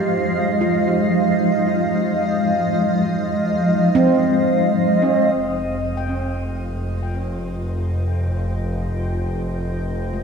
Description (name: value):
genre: ambient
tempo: free time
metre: none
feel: none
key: F minor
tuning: A4 = 440 Hz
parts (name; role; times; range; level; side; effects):
- granular cloud pad; sustained chords; 0.0-10.2 s; F3 to G5; -19 LUFS; equal; built-in reverb, shimmer reverb
- handpan; arpeggios; 0.0-10.2 s; Ab3 to G5; -24 LUFS; right 3 dB; tape echo, shimmer reverb
- rich symphonic double bass section; bass; 5.4-10.2 s; F1; -23 LUFS; equal; none
room: wet lush hall reverb, RT60 2.9 s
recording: dreamy mix soaked in reverb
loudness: -17 LUFS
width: side -6 dB against mid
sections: 0.0-5.4 A section; 5.4-10.2 B section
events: none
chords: 0.0 Db/F (rootless)